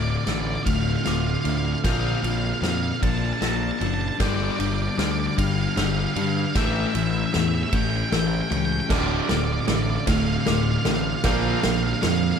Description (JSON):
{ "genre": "post-rock", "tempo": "51 BPM (dotted quarters)", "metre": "6/8", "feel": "straight", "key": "D minor", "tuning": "A4 = 441 Hz", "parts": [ { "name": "octave-fuzz lead guitar", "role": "melody", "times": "0.0-12.4 s", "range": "D5 to A5", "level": "-29 LUFS", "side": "right 3 dB", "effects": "distortion, digital delay" }, { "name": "icy glass pad", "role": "sustained chords", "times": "0.1-12.4 s", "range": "D3 to A5", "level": "-34 LUFS", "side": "right 2 dB", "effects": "none" }, { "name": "electric guitar at the edge of break-up", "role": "arpeggios", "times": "0.0-12.4 s", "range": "D2 to Bb4", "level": "-32 LUFS", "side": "left 1 dB", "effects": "slapback echo, digital delay" }, { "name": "glockenspiel with brass mallets", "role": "arpeggios", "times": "0.0-12.4 s", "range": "D6 to F7", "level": "-38 LUFS", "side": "right 2 dB", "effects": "slapback echo, digital delay" }, { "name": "distorted electric guitar", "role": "riff", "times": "0.0-12.4 s", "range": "D2 to Bb3", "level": "-28 LUFS", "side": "left 10 dB", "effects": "distortion" }, { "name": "fuzz picked electric bass", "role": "bass", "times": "0.0-12.3 s", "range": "D1 to G2", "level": "-27 LUFS", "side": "right 1 dB", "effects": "overdrive" }, { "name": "loose indie drum kit", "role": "drums", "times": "0.3-12.2 s", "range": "crash cymbal, kick drum, ride cymbal, snare drum", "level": "-27 LUFS", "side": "equal", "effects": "none" }, { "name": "distorted electric guitar", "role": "riff", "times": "8.9-12.4 s", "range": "D2 to Bb3", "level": "-26 LUFS", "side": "right 10 dB", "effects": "overdrive" } ], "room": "moderate concert hall reverb, RT60 2.4 s", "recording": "big arena sound", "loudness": "-20 LUFS", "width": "side -7 dB against mid", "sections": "0.0-12.4 A section", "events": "build-up 0.0-12.4; drum fill 0.0-12.4", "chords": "0.0 Dm7; 1.9 Bbmaj7; 4.2 Gsus2; 6.6 A7; 8.9 Dm7; 11.3 Bbmaj7", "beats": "0.68 | 1.85 3.03 | 4.21 5.39 | 6.56 7.74 | 8.91 10.09 | 11.26" }